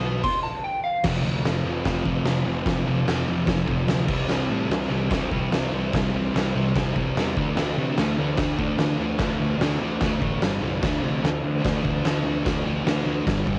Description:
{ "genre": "garage rock duo or trio", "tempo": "147 BPM", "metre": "4/4", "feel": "straight", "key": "unclear", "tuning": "A4 = 440 Hz", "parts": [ { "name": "fuzz guitar", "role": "riff", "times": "0.0-13.6 s", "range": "F2 to D4", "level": "-28 LUFS", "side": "equal", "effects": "distortion, cassette tape" }, { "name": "fuzz picked electric bass", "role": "bass", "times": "0.0-13.6 s", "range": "F1 to C3", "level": "-31 LUFS", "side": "equal", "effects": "overdrive" }, { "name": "electric slide guitar", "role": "melody", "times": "0.2-1.0 s", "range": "F5 to C6", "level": "-27 LUFS", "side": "equal", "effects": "cassette tape" }, { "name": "oversized low-tuned drum kit", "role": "drums", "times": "0.2-13.6 s", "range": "crash cymbal, kick drum, snare drum", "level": "-28 LUFS", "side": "equal", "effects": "cassette tape" } ], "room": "light reverb", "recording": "home recording on cassette", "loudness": "-24 LUFS", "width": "mono", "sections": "0.0-1.0 A section; 1.0-13.6 B section", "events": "electric slide guitar solo 0.0-1.0", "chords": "0.0 N.C.; 1.0 F5; 4.1 C5; 7.4 D5; 10.4 G5; 10.8 D5" }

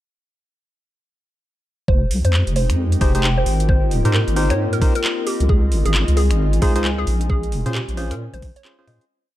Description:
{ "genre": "UK garage, two-step garage", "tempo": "133 BPM", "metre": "4/4", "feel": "swing 61% on 16ths", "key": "F minor", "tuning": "A4 = 436 Hz", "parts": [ { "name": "hollow square pluck", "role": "melody", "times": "1.9-9.0 s", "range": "G4 to Eb5", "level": "-27 LUFS", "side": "equal", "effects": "chorus, tape echo" }, { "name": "airy breathy pad", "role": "sustained chords", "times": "1.9-9.1 s", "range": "Ab3 to G4", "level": "-30 LUFS", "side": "right 1 dB", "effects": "chorus, sidechain pumping" }, { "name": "deep soft wobble bass", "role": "bass", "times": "1.9-9.0 s", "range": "Eb1 to Bb2", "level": "-18 LUFS", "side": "equal", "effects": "chorus" }, { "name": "electronic kick drum", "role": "drums", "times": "1.9-8.5 s", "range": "none", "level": "-17 LUFS", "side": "equal", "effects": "none" }, { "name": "warbly tape-like pad", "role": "texture", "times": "2.8-9.1 s", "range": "F4 to Ab5", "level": "-29 LUFS", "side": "left 5 dB", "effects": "chorus, built-in reverb, sidechain pumping" }, { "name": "garage drum kit", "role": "drums", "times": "2.1-9.1 s", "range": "finger snaps, handclaps, hi-hat", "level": "-26 LUFS", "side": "right 1 dB", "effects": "overdrive" }, { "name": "percussive organ stab", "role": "stabs", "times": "3.0-9.0 s", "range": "Db4 to C5", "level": "-26 LUFS", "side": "equal", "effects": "chorus, dub echo" } ], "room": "digital ambience", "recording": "dark, warm production", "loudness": "-16 LUFS", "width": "side -14 dB against mid", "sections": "1.9-9.1 groove", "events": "fade-out 6.7-9.1", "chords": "1.9 Fm7; 3.5 Abmaj7; 5.3 Dbmaj7; 7.3 Bbm9" }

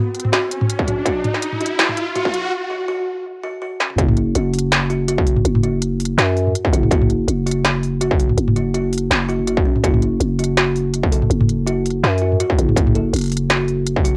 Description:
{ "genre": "half-time drum and bass", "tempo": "164 BPM", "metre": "4/4", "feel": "swing 55% on 16ths, half-time", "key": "unclear", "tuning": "A4 = 440 Hz", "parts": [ { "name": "kalimba", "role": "arpeggios", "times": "0.0-14.2 s", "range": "C#4 to A4", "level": "-26 LUFS", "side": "equal", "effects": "low-pass filter, cassette tape, analog delay" }, { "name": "riser", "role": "sound effects", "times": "0.0-2.5 s", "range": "none", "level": "-27 LUFS", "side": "equal", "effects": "none" }, { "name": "industrial drum kit", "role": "drums", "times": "0.1-14.1 s", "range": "hi-hat, snare drum, toms", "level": "-22 LUFS", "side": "equal", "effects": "cassette tape" }, { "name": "electronic kick drum", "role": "drums", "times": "0.8-14.0 s", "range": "none", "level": "-20 LUFS", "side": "equal", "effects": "distortion, cassette tape" }, { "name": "growling 808-style bass", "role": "bass", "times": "4.0-14.2 s", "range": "F#1 to F#2", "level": "-21 LUFS", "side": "equal", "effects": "none" } ], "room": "light reverb", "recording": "home recording on cassette, high-pass filter", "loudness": "-18 LUFS", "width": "mono", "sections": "0.0-4.0 A section; 4.0-14.2 B section", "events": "build-up 0.0-4.0; riser 0.0-2.5; filter sweep on kalimba 0.0-4.0; break 2.5-4.0; drum fill 3.8; drop 4.0-14.2", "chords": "0.0 F#5; 4.0 N.C." }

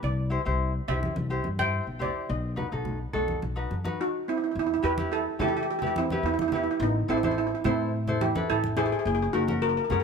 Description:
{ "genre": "calypso", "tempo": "106 BPM", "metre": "4/4", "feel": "straight", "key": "E harmonic minor from 4.6 s", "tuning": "A4 = 435 Hz", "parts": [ { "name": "steel pan", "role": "melody", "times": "0.0-10.0 s", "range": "B3 to G5", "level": "-27 LUFS", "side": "right 2 dB", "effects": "none" }, { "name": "ukulele", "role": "accompaniment", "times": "0.0-10.0 s", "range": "C#4 to C5", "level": "-32 LUFS", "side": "left 2 dB", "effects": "none" }, { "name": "upright bass", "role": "bass", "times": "0.0-10.0 s", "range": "F#1 to E3", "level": "-30 LUFS", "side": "left 1 dB", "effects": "none" }, { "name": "congas", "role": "percussion", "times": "0.9-10.0 s", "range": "none", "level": "-36 LUFS", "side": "right 1 dB", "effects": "none" } ], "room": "moderate plate reverb, RT60 3.5 s", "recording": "none", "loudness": "-25 LUFS", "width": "side -6 dB against mid", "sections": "0.0-4.6 A section; 4.6-10.0 B section", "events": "none", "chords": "0.0 C; 2.3 B; 4.6 Em; 6.8 Am; 9.1 F#" }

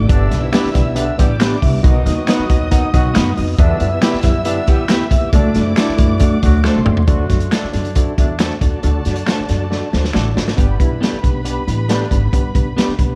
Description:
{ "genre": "uptempo 1960s-style soul", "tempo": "138 BPM", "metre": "4/4", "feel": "straight", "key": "G major", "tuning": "A4 = 440 Hz", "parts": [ { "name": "muted studio string section", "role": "second line", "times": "0.0-13.2 s", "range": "F#4 to E6", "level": "-31 LUFS", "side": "equal", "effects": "tape echo" }, { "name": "mellow tine electric piano", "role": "accompaniment", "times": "0.0-13.2 s", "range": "A3 to G5", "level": "-23 LUFS", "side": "equal", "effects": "none" }, { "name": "upright bass", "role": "bass", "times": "0.0-13.2 s", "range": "G1 to F#2", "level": "-21 LUFS", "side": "equal", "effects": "none" }, { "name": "mellow horn section", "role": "second line", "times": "0.1-12.2 s", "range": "A2 to G4", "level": "-28 LUFS", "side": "equal", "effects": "none" }, { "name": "crunchy breakbeat drum kit", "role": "drums", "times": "0.1-13.1 s", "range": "hi-hat, kick drum, snare drum, toms", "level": "-18 LUFS", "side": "equal", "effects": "none" }, { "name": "clean electric guitar", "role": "stabs", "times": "0.5-12.9 s", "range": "A3 to B4", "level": "-26 LUFS", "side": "equal", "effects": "none" }, { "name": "finger snaps", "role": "percussion", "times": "0.5-10.2 s", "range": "none", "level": "-31 LUFS", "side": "equal", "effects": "none" } ], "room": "light reverb", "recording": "dark, warm production, vinyl crackle", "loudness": "-15 LUFS", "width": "mono", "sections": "0.0-7.1 A section; 7.1-10.6 B section; 10.6-13.2 C section", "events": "drum fill 6.6-7.1, 9.7-10.6", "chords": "0.1 G; 1.8 B; 3.6 Em; 5.3 D; 10.6 G" }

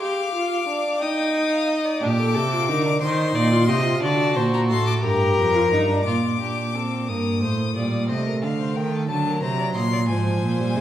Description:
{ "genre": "classical, baroque-style fugue for string quartet", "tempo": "60 BPM (dotted quarters)", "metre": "6/8", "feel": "straight", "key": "unclear", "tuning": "A4 = 440 Hz", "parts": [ { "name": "warm violin", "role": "melody", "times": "0.0-10.8 s", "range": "Eb5 to Eb6", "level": "-27 LUFS", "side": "left 7 dB", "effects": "none" }, { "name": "rich violin", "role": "second line", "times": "0.0-10.8 s", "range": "F4 to G5", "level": "-27 LUFS", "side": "left 3 dB", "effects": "none" }, { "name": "warm viola", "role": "accompaniment", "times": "0.0-10.8 s", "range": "F3 to A4", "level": "-25 LUFS", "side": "right 1 dB", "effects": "none" }, { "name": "rich cello", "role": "bass", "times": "2.0-10.8 s", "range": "F2 to Eb3", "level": "-23 LUFS", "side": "right 2 dB", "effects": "none" } ], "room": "wet recital hall reverb, RT60 1.4 s", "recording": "heard from further back in the room", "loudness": "-19 LUFS", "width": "side -11 dB against mid", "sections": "0.0-6.1 A section; 6.1-10.8 B section", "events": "none", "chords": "0.0 G5; 1.0 Eb; 2.0 Gm/Bb; 3.0 Cm; 4.0 D7; 5.0 Gm; 6.1 Bb; 7.1 Eb/G; 8.1 Adim/C; 9.1 D; 10.1 Fm/Ab" }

